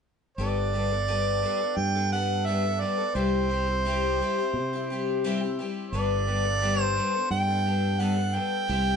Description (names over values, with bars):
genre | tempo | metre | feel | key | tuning
folk rock and heartland rock | 86 BPM | 4/4 | straight | G major | A4 = 442 Hz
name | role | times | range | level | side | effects
warm harmonica | melody | 0.4-9.0 s | C5 to G5 | -28 LUFS | right 3 dB | none
picked twelve-string acoustic guitar | accompaniment | 0.4-9.0 s | C3 to A4 | -29 LUFS | left 5 dB | none
fingered electric bass | bass | 0.4-9.0 s | G1 to C3 | -29 LUFS | right 1 dB | none
room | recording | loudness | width
moderate stone room reverb, RT60 1.1 s | band playing live in one room, nothing above 10.6 kHz | -24 LUFS | side -6 dB against mid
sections
0.4-9.0 A section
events
none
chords
0.4 Gadd9; 3.2 C; 5.9 Gadd9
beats
| 0.38 1.07 1.76 2.46 | 3.15 3.85 4.54 5.23 | 5.92 6.62 7.31 8.00 | 8.70